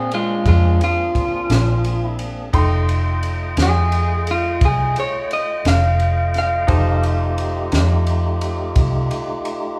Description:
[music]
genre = slow blues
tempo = 58 BPM (dotted quarters)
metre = 12/8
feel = straight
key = unclear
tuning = A4 = 435 Hz
[part]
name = electric guitar through a small old amp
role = melody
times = 0.0-7.7 s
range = Ab3 to F5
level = -23 LUFS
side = equal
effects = none
[part]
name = bright concert grand piano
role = accompaniment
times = 0.0-9.8 s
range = A3 to C6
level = -31 LUFS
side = equal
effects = none
[part]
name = tonewheel organ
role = sustained chords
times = 0.0-9.8 s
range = A3 to G5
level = -30 LUFS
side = equal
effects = slow rotary speaker
[part]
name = vintage muted fingered electric bass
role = bass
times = 0.0-9.1 s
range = F1 to Bb2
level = -20 LUFS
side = equal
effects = none
[part]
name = compact cocktail drum kit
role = drums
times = 0.1-9.6 s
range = kick drum, ride cymbal, snare drum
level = -25 LUFS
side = equal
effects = none
[sound]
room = wet large studio reverb, RT60 1.2 s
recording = band playing live in one room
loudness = -18 LUFS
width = mono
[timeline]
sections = 0.0-9.8 A section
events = clean electric guitar solo 0.0-9.8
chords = 0.0 Bb9; 2.5 F9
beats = 0.46 1.50 | 2.54 3.57 4.61 5.65 | 6.69 7.72 8.76

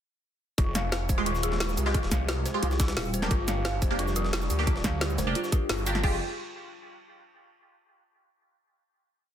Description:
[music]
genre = dark technical drum and bass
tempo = 176 BPM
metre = 4/4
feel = straight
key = F dorian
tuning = A4 = 440 Hz
[part]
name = dark analog pad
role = sustained chords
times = 1.0-6.2 s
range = G3 to G4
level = -38 LUFS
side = right 2 dB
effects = chorus, vintage 12-bit sampler grit, sidechain pumping
[part]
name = dark detuned synth bell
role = arpeggios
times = 0.6-6.2 s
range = F4 to F5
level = -35 LUFS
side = left 2 dB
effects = chorus, phaser, sidechain pumping, dub echo
[part]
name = snarling distorted saw bass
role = bass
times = 0.6-6.2 s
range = Eb1 to D2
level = -30 LUFS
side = equal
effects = distortion, overdrive
[part]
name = drum and bass drum kit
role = drums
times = 0.6-6.1 s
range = crash cymbal, kick drum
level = -28 LUFS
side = equal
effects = none
[part]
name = drum and bass drum kit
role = drums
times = 0.6-6.0 s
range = hi-hat, shaker, snare drum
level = -31 LUFS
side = equal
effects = none
[part]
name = jungle sampler-style drum kit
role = drums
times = 0.6-6.0 s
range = hi-hat, snare drum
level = -40 LUFS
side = equal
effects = high-pass filter on hats, high-pass filter on snare
[part]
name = band-passed chord stab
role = stabs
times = 1.2-6.2 s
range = Ab3 to G4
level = -33 LUFS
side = right 2 dB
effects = phaser, analog chorus, dub echo
[part]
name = pulsing pluck wobble bass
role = bass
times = 2.6-5.3 s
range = Eb1 to C2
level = -29 LUFS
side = equal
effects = chorus
[sound]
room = light reverb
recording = dense, heavily limited modern master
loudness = -25 LUFS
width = side -10 dB against mid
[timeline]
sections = 0.6-6.0 drop; 6.0-7.4 final chord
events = drop 0.6-6.0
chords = 0.6 Fmadd9; 3.3 Gm; 6.0 Fsus2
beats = | 0.58 0.92 1.26 1.60 | 1.95 2.29 2.63 2.97 | 3.31 3.65 3.99 4.33 | 4.67 5.01 5.35 5.70 | 6.04

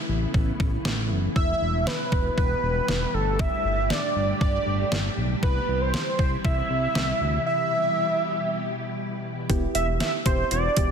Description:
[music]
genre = synth-pop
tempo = 118 BPM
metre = 4/4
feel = straight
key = E minor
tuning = A4 = 440 Hz
[part]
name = soft string machine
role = sustained chords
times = 0.0-9.5 s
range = A2 to G4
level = -31 LUFS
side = equal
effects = ensemble chorus
[part]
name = smooth gliding synth bass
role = bass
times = 0.1-10.9 s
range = E1 to D2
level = -27 LUFS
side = equal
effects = none
[part]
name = detuned 8-bit digital drum machine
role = drums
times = 0.3-10.9 s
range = hi-hat, kick drum, snare drum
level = -26 LUFS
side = equal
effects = overdrive
[part]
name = wide unison lead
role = melody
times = 1.4-10.9 s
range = A4 to E5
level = -26 LUFS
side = right 1 dB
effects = none
[part]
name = soft electric-piano-like synth keys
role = accompaniment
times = 9.5-10.9 s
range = B3 to G4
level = -30 LUFS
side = right 2 dB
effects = chorus
[sound]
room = moderate lush hall reverb, RT60 1.9 s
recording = dense, heavily limited modern master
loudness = -22 LUFS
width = side -7 dB against mid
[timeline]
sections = 0.0-9.5 A section; 9.5-10.9 B section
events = none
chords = 0.0 Aadd9; 1.4 Em; 3.1 Gsus2; 5.4 C; 7.5 Em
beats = 0.34 0.85 | 1.36 1.87 2.38 2.89 | 3.39 3.90 4.41 4.92 | 5.43 5.94 6.45 6.95 | 7.46 7.97 8.48 8.99 | 9.50 10.00 10.51

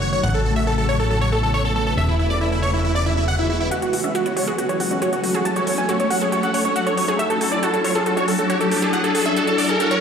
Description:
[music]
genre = uplifting trance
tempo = 138 BPM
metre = 4/4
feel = straight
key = F# minor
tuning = A4 = 441 Hz
[part]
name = big supersaw lead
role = melody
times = 0.0-10.0 s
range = E4 to A5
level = -22 LUFS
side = equal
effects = phaser, low-pass filter, ping-pong delay
[part]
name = wide unison pluck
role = second line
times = 0.0-10.0 s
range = E4 to A5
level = -29 LUFS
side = right 1 dB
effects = ping-pong delay
[part]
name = plucky analog bass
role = bass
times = 0.0-3.7 s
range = E1 to A1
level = -22 LUFS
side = equal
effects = none
[part]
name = wide unison pluck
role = arpeggios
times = 3.7-10.0 s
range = C#4 to F#5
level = -26 LUFS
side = right 3 dB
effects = ping-pong delay
[part]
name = electronic hi-hat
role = drums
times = 3.7-10.0 s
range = none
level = -30 LUFS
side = equal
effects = none
[part]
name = riser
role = sound effects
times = 5.7-10.0 s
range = none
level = -26 LUFS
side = left 1 dB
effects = none
[sound]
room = moderate huge ambient reverb, RT60 7.7 s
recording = played on a big sound system in a bare room, large studio reverb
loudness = -18 LUFS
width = side -7 dB against mid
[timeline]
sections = 0.0-3.7 A section; 3.7-10.0 B section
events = build-up 3.7-10.0; filter sweep on supersaw synth 3.7-10.0; riser 5.7-10.0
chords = 0.2 Aadd9; 2.0 Eadd9; 3.7 F#m; 7.2 Dadd9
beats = | 0.24 0.67 1.11 1.54 | 1.98 2.41 2.85 3.28 | 3.71 4.15 4.58 5.02 | 5.45 5.89 6.32 6.76 | 7.19 7.63 8.06 8.50 | 8.93 9.37 9.80

